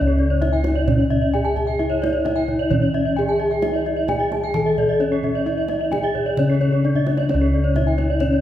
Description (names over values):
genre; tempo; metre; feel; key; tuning
Balinese gamelan; 131 BPM; 4/4; straight; C# pelog; A4 = 440 Hz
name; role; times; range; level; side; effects
gamelan-type bronze metallophone; melody; 0.0-8.4 s; C#4 to A4-40c; -22 LUFS; left 1 dB; none
gamelan-type bronze metallophone; arpeggios; 0.0-8.3 s; C#5 to A5-40c; -25 LUFS; left 2 dB; none
gamelan-type bossed gongs; bass; 0.0-8.4 s; C#2 to E4-50c; -22 LUFS; left 1 dB; none
gamelan-type bronze metallophone; arpeggios; 0.1-8.4 s; A4-40c to A5-40c; -27 LUFS; right 5 dB; none
kendang; percussion; 0.4-8.4 s; none; -28 LUFS; right 3 dB; none
room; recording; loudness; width
wet recital hall reverb, RT60 1.8 s; recorded in a church or concert hall; -17 LUFS; side -12 dB against mid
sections
0.0-8.4 A section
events
drum fill 7.0-7.3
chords
none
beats
0.42 0.88 1.34 | 1.80 2.26 2.71 3.17 | 3.63 4.09 4.55 5.00 | 5.46 5.92 6.38 6.84 | 7.29 7.75 8.21